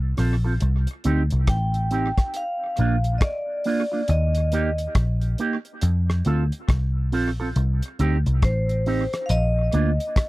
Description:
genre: roots reggae.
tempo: 69 BPM.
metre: 4/4.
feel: swing 62% on 16ths.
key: C dorian.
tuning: A4 = 440 Hz.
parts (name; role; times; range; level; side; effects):
vintage muted picked electric bass; bass; 0.0-10.0 s; A1 to F2; -21 LUFS; equal; none.
electric guitar with an envelope filter; accompaniment; 0.2-9.9 s; Bb3 to A4; -28 LUFS; right 4 dB; lush chorus, dub echo.
cloth-damped thuddy drum kit; drums; 0.2-10.3 s; hi-hat, kick drum, rim click; -24 LUFS; equal; tape echo.
vibraphone with hard mallets; melody; 1.5-10.3 s; C5 to G5; -27 LUFS; equal; dub echo.
room: little or no reverb.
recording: dry, close 1970s-style studio recording.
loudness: -20 LUFS.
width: side -19 dB against mid.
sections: 0.0-10.3 A section.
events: none.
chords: 0.0 F; 0.6 Cm; 2.3 Bb; 4.1 Eb; 5.8 F; 7.6 Cm; 9.3 Bb.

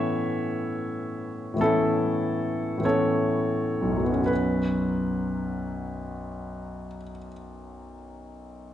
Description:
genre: classical, impressionist solo piano.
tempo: 40-56 BPM.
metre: 4/4.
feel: rubato.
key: unclear.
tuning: A4 = 440 Hz.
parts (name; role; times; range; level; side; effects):
warm concert grand piano; solo; 0.0-8.7 s; B1 to E5; -25 LUFS; equal; none.
room: wet recital hall reverb, RT60 1.5 s.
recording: nothing above 10.9 kHz.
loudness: -24 LUFS.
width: side -11 dB against mid.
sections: 0.0-4.3 A section; 4.3-8.7 B section.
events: slowing down 0.0-4.3.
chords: 0.0 Aadd9; 4.3 Bsus2.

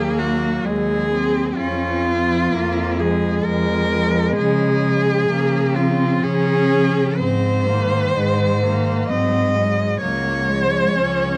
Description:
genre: classical, lyrical piece for cello ensemble.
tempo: 64 BPM.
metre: 3/4.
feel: rubato.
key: Db major.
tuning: A4 = 435 Hz.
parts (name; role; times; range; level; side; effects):
rich cello; melody; 0.0-11.4 s; F4 to Eb5; -23 LUFS; equal; none.
warm cello; second line; 0.0-11.4 s; Eb3 to Gb3; -28 LUFS; equal; none.
rich cello; accompaniment; 0.0-11.4 s; Ab3 to Db4; -26 LUFS; equal; none.
rich cello; bass; 0.0-11.4 s; Db2 to Db3; -24 LUFS; equal; none.
room: moderate recital hall reverb, RT60 1.3 s.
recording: close, detailed microphones, vinyl crackle.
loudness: -19 LUFS.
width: mono.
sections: 0.0-11.4 A section.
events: none.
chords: 0.0 Ab7/Eb; 1.6 Fmadd11; 4.4 Db; 7.2 Ab; 9.1 Ab7; 10.0 Db.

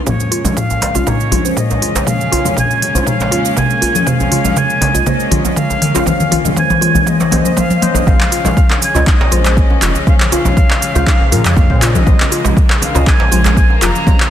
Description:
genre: afro house.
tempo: 120 BPM.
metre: 4/4.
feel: straight.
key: Bb minor.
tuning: A4 = 438 Hz.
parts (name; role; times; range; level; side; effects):
warm studio string section; sustained chords; 0.0-14.3 s; Db3 to Db4; -23 LUFS; left 1 dB; sidechain pumping.
jazz flute; melody; 0.1-14.3 s; Db5 to Bb5; -19 LUFS; right 1 dB; dub echo.
mallet-like synth pluck; arpeggios; 0.1-14.2 s; Ab3 to F4; -22 LUFS; left 1 dB; chorus, phaser, sidechain pumping, dub echo.
deep mellow chord stab; stabs; 0.1-14.2 s; Ab3 to Eb5; -24 LUFS; equal; chorus, sidechain pumping, dub echo.
deep house drum kit; drums; 0.1-14.3 s; handclaps, hi-hat, shaker, toms; -16 LUFS; equal; none.
electronic kick drum; drums; 0.1-14.2 s; none; -13 LUFS; equal; high-pass filter on kick, high-pass filter on room.
congas; percussion; 0.1-14.3 s; none; -22 LUFS; left 3 dB; none.
djembe; percussion; 0.1-14.2 s; none; -21 LUFS; right 1 dB; none.
smooth synth bass; bass; 8.1-13.9 s; F1 to Bb2; -15 LUFS; equal; sidechain pumping.
room: light reverb.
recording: dense, heavily limited modern master.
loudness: -10 LUFS.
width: side -10 dB against mid.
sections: 0.1-8.1 A section; 8.1-14.3 B section.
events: build-up 0.1-8.1; drum fill 0.1-8.1; filter sweep on synth pluck 0.1-8.1; filter sweep on synth stab 0.1-8.1; drop 8.1-14.3.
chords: 0.1 Bbm9.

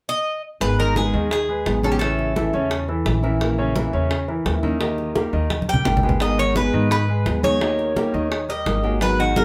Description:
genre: latin, Cuban son and guajira.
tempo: 171 BPM.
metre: 4/4.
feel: straight.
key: G# harmonic minor.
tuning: A4 = 437 Hz.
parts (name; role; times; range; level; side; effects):
Cuban tres; melody; 0.1-2.9, 5.7-9.4 s; F#4 to G5; -25 LUFS; equal; none.
nylon-string guitar; accompaniment; 0.6-9.4 s; D#3 to G#4; -27 LUFS; equal; none.
upright bass; bass; 0.6-9.4 s; G#1 to G#2; -27 LUFS; equal; none.
bongos; percussion; 0.6-9.4 s; none; -31 LUFS; equal; none.
congas; percussion; 0.6-9.4 s; none; -29 LUFS; equal; none.
clear concert grand piano; arpeggios; 0.8-9.4 s; C#3 to D#5; -28 LUFS; equal; none.
room: wet studio ambience, RT60 0.5 s.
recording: band playing live in one room.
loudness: -21 LUFS.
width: mono.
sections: 0.6-9.4 A section.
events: drum fill 5.5-6.2.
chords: 0.0 N.C.; 0.6 G#m; 2.0 A; 3.4 A#dim; 4.8 D#; 6.2 G#m; 7.6 D#.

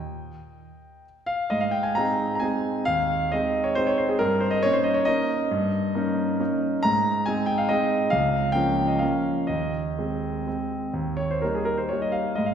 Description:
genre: classical, piano waltz.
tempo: 120-148 BPM.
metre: 3/4.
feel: rubato.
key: Ab major.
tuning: A4 = 440 Hz.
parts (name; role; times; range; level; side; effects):
clear concert grand piano; solo; 0.0-12.5 s; Db2 to Bb5; -22 LUFS; equal; none.
room: wet concert hall reverb, RT60 2.0 s.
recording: heard from further back in the room.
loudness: -22 LUFS.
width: side -8 dB against mid.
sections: 0.0-1.5 A section; 1.5-12.5 B section.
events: none.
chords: 0.0 Eb; 1.5 Ab; 4.2 Eb7/G; 6.8 Ab; 8.1 Bbm/Db; 9.5 Ab/Eb; 10.9 Eb.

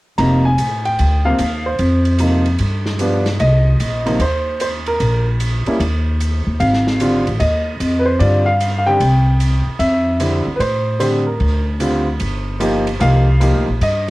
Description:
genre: jazz piano trio.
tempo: 150 BPM.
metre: 4/4.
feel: swing 66% on 8ths.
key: C minor.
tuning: A4 = 440 Hz.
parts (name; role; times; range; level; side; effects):
clear baby grand piano; melody; 0.2-14.1 s; C3 to Bb5; -18 LUFS; equal; cassette tape.
upright bass; bass; 0.2-14.1 s; F1 to A2; -16 LUFS; equal; none.
swinging big-band drum kit; drums; 0.2-13.9 s; hi-hat, ride cymbal, snare drum; -27 LUFS; right 2 dB; none.
room: light reverb.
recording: home recording on cassette.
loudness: -14 LUFS.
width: side -19 dB against mid.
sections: 0.2-3.4 A section; 3.4-14.1 B section.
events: none.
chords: 0.2 Fm7; 1.0 Ebmaj13/D; 1.8 F5; 2.6 G7; 3.4 Cm7; 5.0 N.C.; 6.6 Ab; 8.2 G5; 9.0 C5; 9.8 Fmaj9; 11.4 Dmadd11; 12.2 Gm7; 13.0 Cm7.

